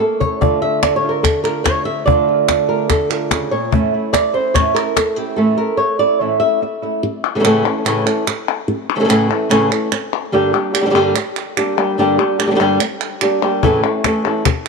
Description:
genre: flamenco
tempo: 145 BPM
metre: 4/4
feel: straight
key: A phrygian dominant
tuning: A4 = 437 Hz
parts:
  - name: flamenco guitar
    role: melody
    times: 0.0-14.5 s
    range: G2 to E5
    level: -15 LUFS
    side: right 1 dB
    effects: none
  - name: flamenco guitar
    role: stabs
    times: 0.0-7.0 s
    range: A2 to F4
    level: -23 LUFS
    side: right 9 dB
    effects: none
  - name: cajon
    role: percussion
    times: 0.2-5.2, 13.6-14.7 s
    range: none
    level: -18 LUFS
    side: left 6 dB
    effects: none
  - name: palmas hand claps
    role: percussion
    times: 0.8-14.7 s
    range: none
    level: -21 LUFS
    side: equal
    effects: none
room: moderate plate reverb, RT60 2.9 s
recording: 1960s-style stereo with parts hard left and right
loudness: -14 LUFS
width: side -4 dB against mid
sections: 0.0-7.0 A section; 7.0-14.7 B section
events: drum fill 0.0-0.4; nylon-string guitar solo 0.0-7.0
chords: 0.4 Dm; 3.7 A; 10.3 Gm; 13.6 A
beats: 0.00 | 0.42 0.83 1.24 1.66 | 2.07 2.48 2.90 3.31 | 3.72 4.14 4.55 4.96 | 5.38 5.79 6.21 6.62 | 7.03 7.44 7.86 8.27 | 8.68 9.09 9.51 9.92 | 10.33 10.74 11.16 11.57 | 11.98 12.39 12.81 13.22 | 13.63 14.04 14.46

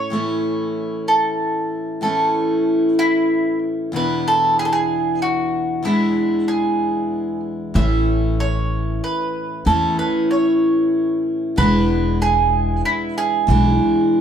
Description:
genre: acoustic folk duo or small band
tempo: 94 BPM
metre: 3/4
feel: straight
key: A major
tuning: A4 = 440 Hz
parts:
  - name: bowl-back mandolin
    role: melody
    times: 0.0-14.2 s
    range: E4 to E5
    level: -21 LUFS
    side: right 3 dB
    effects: none
  - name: picked steel-string acoustic guitar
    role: accompaniment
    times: 0.0-14.2 s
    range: E2 to A4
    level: -19 LUFS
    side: left 1 dB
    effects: none
  - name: upright bass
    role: bass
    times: 7.8-13.8 s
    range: E1 to E2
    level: -19 LUFS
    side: equal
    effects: none
room: moderate large studio reverb, RT60 1.1 s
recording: band playing live in one room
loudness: -16 LUFS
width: side -8 dB against mid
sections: 0.1-14.2 A section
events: none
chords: 0.1 A; 3.9 E7; 7.8 A; 11.6 E7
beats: | 0.12 0.76 1.39 | 2.03 2.67 3.30 | 3.94 4.58 5.21 | 5.85 6.49 7.12 | 7.76 8.40 9.03 | 9.67 10.30 10.94 | 11.57 12.21 12.84 | 13.48 14.11

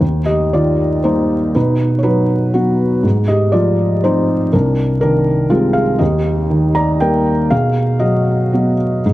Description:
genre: neoclassical minimalist piano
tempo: 120 BPM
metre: 3/4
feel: rubato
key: unclear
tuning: A4 = 439 Hz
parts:
  - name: felt-muted upright piano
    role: solo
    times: 0.0-9.1 s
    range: C2 to Bb5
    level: -12 LUFS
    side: equal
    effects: none
room: light reverb, studio ambience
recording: vinyl crackle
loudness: -12 LUFS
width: side -16 dB against mid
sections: 0.0-9.1 A section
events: none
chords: 0.0 Eb; 1.5 B; 3.0 Ab6; 4.5 Cm; 6.0 Eb; 7.5 B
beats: | 0.01 0.53 1.03 | 1.55 2.05 2.55 | 3.04 3.54 4.04 | 4.53 5.02 5.51 | 6.00 6.50 7.01 | 7.51 8.02 8.53 | 9.04

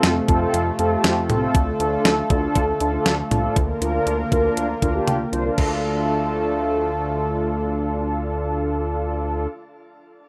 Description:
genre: synth-pop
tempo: 119 BPM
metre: 4/4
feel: straight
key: D minor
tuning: A4 = 436 Hz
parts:
  - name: mellow synth brass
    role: accompaniment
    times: 0.0-9.5 s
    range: C4 to C5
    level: -25 LUFS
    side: equal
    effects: chorus, shimmer reverb
  - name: warm analog pad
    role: sustained chords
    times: 0.0-9.5 s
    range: C3 to Bb4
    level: -27 LUFS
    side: equal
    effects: chorus, shimmer reverb
  - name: chorused synth bass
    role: bass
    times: 0.0-9.5 s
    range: C2 to F2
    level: -29 LUFS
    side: equal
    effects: none
  - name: clean 12-bit digital drum machine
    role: drums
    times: 0.0-5.7 s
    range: crash cymbal, hi-hat, kick drum, snare drum, toms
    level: -24 LUFS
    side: equal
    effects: none
  - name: downlifter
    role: sound effects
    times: 0.0-1.5 s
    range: none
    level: barely audible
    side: none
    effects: none
room: wet small room reverb, RT60 0.6 s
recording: rough home demo mix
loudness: -21 LUFS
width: mono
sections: 0.0-5.6 A section; 5.6-9.6 B section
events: none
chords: 0.0 F; 1.5 Dm; 3.6 Bb/D; 5.6 Dm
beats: 0.03 0.54 1.04 | 1.54 2.05 2.55 3.06 | 3.56 4.07 4.57 5.08 | 5.58 6.08 6.59 7.09 | 7.60 8.10 8.60 9.11

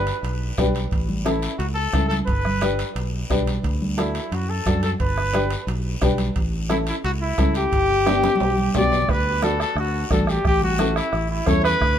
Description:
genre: latin, cumbia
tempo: 176 BPM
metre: 4/4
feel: straight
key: D major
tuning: A4 = 440 Hz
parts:
  - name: mellow trumpet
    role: melody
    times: 0.0-12.0 s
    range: E4 to D5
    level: -23 LUFS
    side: left 1 dB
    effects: none
  - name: warm upright piano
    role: accompaniment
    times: 0.0-11.7 s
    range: B3 to B4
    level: -27 LUFS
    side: left 3 dB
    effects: none
  - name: fingered electric bass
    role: bass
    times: 0.0-12.0 s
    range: G1 to F#2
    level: -25 LUFS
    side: equal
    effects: none
  - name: guiro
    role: percussion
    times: 0.1-12.0 s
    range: none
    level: -36 LUFS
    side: left 4 dB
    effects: none
  - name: timbales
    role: percussion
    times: 0.1-9.0 s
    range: none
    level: -33 LUFS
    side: right 4 dB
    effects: none
  - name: congas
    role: percussion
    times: 0.2-12.0 s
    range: none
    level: -29 LUFS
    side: right 1 dB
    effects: none
  - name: bombo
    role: percussion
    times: 0.6-12.0 s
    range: none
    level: -25 LUFS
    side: right 1 dB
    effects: none
room: light reverb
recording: minimal, uncompressed stereo recording, faint mains hum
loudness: -19 LUFS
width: side -9 dB against mid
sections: 0.0-9.1 A section; 9.1-12.0 B section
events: drum fill 8.1-9.1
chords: 0.0 G; 0.9 A; 2.3 G; 3.6 D; 5.0 G; 6.4 A; 7.7 G; 9.1 D; 10.5 A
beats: 0.24 0.58 | 0.92 1.26 1.60 1.94 | 2.28 2.62 2.96 3.30 | 3.64 3.98 4.32 4.66 | 5.00 5.34 5.68 6.03 | 6.37 6.71 7.05 7.39 | 7.73 8.07 8.41 8.75 | 9.09 9.43 9.77 10.11 | 10.45 10.79 11.13 11.47 | 11.81

